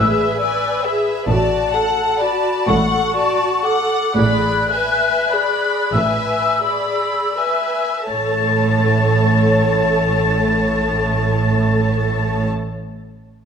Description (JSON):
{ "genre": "classical, slow romantic movement for symphony orchestra", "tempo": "26-47 BPM (dotted quarters)", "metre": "6/8", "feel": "rubato", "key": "A major", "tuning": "A4 = 440 Hz", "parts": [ { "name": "rich studio violin section", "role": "melody", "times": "0.0-12.5 s", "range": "E5 to B5", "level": "-26 LUFS", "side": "left 2 dB", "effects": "none" }, { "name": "large flute ensemble", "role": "second line", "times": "0.0-12.4 s", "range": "A5 to A6", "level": "-20 LUFS", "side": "left 3 dB", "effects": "none" }, { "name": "rich studio violin section", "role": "second line", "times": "0.0-12.5 s", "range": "B4 to F#5", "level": "-23 LUFS", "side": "left 3 dB", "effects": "none" }, { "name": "rich studio viola section", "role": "accompaniment", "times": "0.0-12.5 s", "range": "F#4 to B4", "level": "-23 LUFS", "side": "right 1 dB", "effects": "none" }, { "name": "rich studio cello section", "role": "bass", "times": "0.0-12.5 s", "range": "A2", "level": "-22 LUFS", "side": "right 2 dB", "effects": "none" }, { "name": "warm studio double bass section", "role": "bass", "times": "0.0-12.5 s", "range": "A1", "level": "-22 LUFS", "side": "right 3 dB", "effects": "none" } ], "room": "wet recital hall reverb, RT60 1.7 s", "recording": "none", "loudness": "-15 LUFS", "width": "side -7 dB against mid", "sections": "0.0-8.1 A section; 8.1-12.0 B section", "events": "slowing down 0.0-8.1", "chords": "0.0 E7/A; 1.3 D/A; 4.2 E7/A; 8.1 A" }